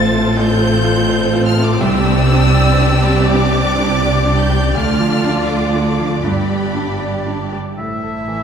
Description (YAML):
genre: cinematic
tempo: 82 BPM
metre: 4/4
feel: rubato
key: unclear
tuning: A4 = 440 Hz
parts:
  - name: rich studio violin section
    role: melody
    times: 0.0-8.4 s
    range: C5 to A6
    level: -22 LUFS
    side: left 1 dB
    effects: none
  - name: rich studio violin section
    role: second line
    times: 0.0-8.4 s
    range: E4 to D5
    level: -21 LUFS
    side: left 2 dB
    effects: none
  - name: clear baby grand piano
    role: accompaniment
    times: 0.0-8.4 s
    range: A1 to D5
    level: -20 LUFS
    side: right 1 dB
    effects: none
  - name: warm studio viola section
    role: accompaniment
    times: 0.0-8.4 s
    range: G3 to F4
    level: -23 LUFS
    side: right 1 dB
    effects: none
  - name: rich studio cello section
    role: bass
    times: 0.0-7.6 s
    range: G2 to D3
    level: -20 LUFS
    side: right 1 dB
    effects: none
  - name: rich studio double bass section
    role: bass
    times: 0.0-8.4 s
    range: G1 to D2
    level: -18 LUFS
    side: right 1 dB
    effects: none
  - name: bright oboe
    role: second line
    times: 7.8-8.4 s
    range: E5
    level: -24 LUFS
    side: left 1 dB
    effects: none
room: wet scoring stage reverb, RT60 1.5 s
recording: heard from further back in the room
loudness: -13 LUFS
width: side -7 dB against mid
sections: 0.0-7.8 A section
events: none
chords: 0.0 F/A; 1.8 Cadd9; 4.7 Dm; 6.2 G; 7.8 Am